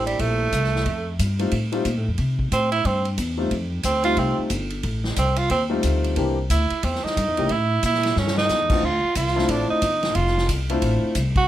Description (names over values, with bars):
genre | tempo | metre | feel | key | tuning
jazz, small-group swing and bop | 181 BPM | 4/4 | swing 62% on 8ths | unclear | A4 = 440 Hz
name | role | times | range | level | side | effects
edgy tenor saxophone | second line | 0.0-11.5 s | G3 to F#4 | -22 LUFS | right 3 dB | none
warm grand piano | accompaniment | 0.0-11.1 s | E3 to G4 | -25 LUFS | left 3 dB | none
upright bass | bass | 0.0-11.5 s | F1 to C3 | -24 LUFS | equal | none
swinging big-band drum kit | drums | 0.1-11.4 s | crash cymbal, hi-hat, kick drum, ride cymbal, snare drum | -28 LUFS | equal | none
room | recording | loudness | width
light reverb | none | -20 LUFS | side -12 dB against mid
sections
0.0-11.5 A section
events
tenor saxophone solo 0.0-11.5; drum fill 8.2-8.5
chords
0.0 C7; 0.9 F7; 2.2 C; 3.5 F7; 6.2 C7; 7.5 A5; 8.8 Dm7